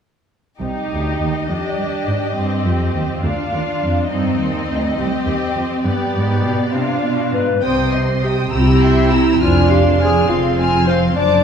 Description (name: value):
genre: quick classical-period movement for symphony orchestra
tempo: 68 BPM (dotted quarters)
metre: 6/8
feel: straight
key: C minor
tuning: A4 = 438 Hz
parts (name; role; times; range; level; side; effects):
- dark studio violin section; melody; 0.6-11.4 s; D5 to F6; -27 LUFS; left 3 dB; none
- warm studio violin section; second line; 0.6-11.4 s; Eb4 to Bb5; -23 LUFS; left 1 dB; none
- rich studio viola section; accompaniment; 0.6-11.4 s; B3 to E4; -22 LUFS; equal; none
- rich studio cello section; bass; 0.6-11.4 s; C2 to C3; -19 LUFS; right 1 dB; none
- warm clarinet; second line; 7.3-11.4 s; E4 to D5; -18 LUFS; equal; none
- rich studio double bass section; bass; 7.6-11.4 s; F1 to C2; -19 LUFS; right 1 dB; none
room: wet recital hall reverb, RT60 1.7 s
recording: heard from further back in the room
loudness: -15 LUFS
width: side -7 dB against mid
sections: 0.6-7.6 A section; 7.6-11.4 B section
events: none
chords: 0.6 Cm; 5.8 G7; 7.6 Cm; 8.5 C7; 9.4 Fm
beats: | 0.60 1.48 | 2.36 3.23 | 4.10 4.97 | 5.84 6.72 | 7.64 8.53 | 9.41 10.29 | 11.17